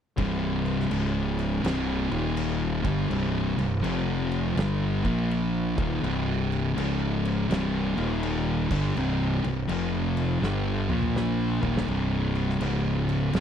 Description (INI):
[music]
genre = stoner and doom metal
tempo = 82 BPM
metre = 4/4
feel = swing 65% on 8ths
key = C minor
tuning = A4 = 440 Hz
[part]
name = thick fuzz guitar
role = riff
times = 0.2-13.4 s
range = C2 to Bb3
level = -27 LUFS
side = left 6 dB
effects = distortion
[part]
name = thick fuzz guitar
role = riff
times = 0.2-13.4 s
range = C2 to Bb3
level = -30 LUFS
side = right 13 dB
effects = distortion
[part]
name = fuzz fingered electric bass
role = bass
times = 0.2-13.4 s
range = C1 to Bb1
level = -30 LUFS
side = right 1 dB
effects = overdrive
[part]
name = oversized low-tuned drum kit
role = drums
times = 0.2-13.4 s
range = crash cymbal, kick drum, snare drum, toms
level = -35 LUFS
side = equal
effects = none
[sound]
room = little or no reverb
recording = dry, close 1970s-style studio recording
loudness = -24 LUFS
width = side -8 dB against mid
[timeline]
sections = 0.2-13.4 A section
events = drum fill 10.4-11.9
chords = 0.2 C5; 0.9 Db5; 1.6 C5; 2.0 Eb5; 2.7 C5; 3.8 F5; 4.6 G5; 4.9 Bb5; 5.7 Cm; 6.8 Db5; 7.5 C5; 7.9 Eb5; 8.6 C5; 9.7 F5; 10.4 G5; 10.8 Bb5; 11.5 Cm; 12.6 Db5